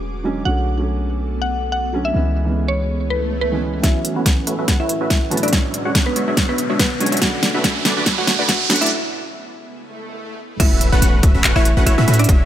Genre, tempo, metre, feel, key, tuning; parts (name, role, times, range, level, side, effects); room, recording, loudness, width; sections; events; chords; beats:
future bass; 142 BPM; 4/4; swing 55% on 16ths, half-time; A4 = 439 Hz
felt-muted upright piano; accompaniment; 0.0-8.9 s; D3 to C#4; -25 LUFS; right 2 dB; sidechain pumping
ethereal airy pad; sustained chords; 0.0-12.5 s; E2 to D6; -32 LUFS; right 1 dB; ensemble chorus, built-in reverb, vintage 12-bit sampler grit, sidechain pumping
warm 808-style bass; bass; 0.0-3.8, 10.6-12.5 s; E1 to A2; -18 LUFS; equal; sidechain pumping
mallet-like synth pluck; melody; 0.5-12.3 s; B3 to F#5; -24 LUFS; equal; chorus, sidechain pumping, tape echo
swell, riser and impact; sound effects; 3.1-12.3 s; -25 LUFS; right 1 dB
supersaw stab; riff; 3.8-12.5 s; G#3 to A5; -22 LUFS; equal; sidechain pumping, low-pass filter
electronic kick drum; drums; 3.8-12.4 s; -17 LUFS; equal
pop drum kit; drums; 3.8-12.4 s; crash cymbal, handclaps, hi-hat, snare drum; -20 LUFS; equal
light reverb; high-pass filter; -15 LUFS; side -11 dB against mid
0.0-3.8 A section; 3.8-10.6 B section; 10.6-12.5 C section
swell 3.1-3.8, 9.9-10.6; build-up 3.8-10.6; drum fill 3.8-8.9; riser 3.8-8.9; filter sweep on supersaw synth 3.8-10.6; filter sweep on synth pluck 3.8-10.6; filter sweep 3.8-10.6; break 8.9-10.6; drop 10.6-12.5; impact 10.6-12.3
0.5 Bm7; 2.1 C#m7; 3.8 A69; 5.5 E13; 7.2 Bm7; 8.9 C#m7; 10.6 A69
0.03 | 0.46 0.88 1.30 1.72 | 2.15 2.57 2.99 3.42 | 3.84 4.26 4.68 5.11 | 5.53 5.95 6.37 6.79 | 7.22 7.64 8.06 8.48 | 8.91 9.33 9.75 10.18 | 10.60 11.02 11.44 11.87 | 12.29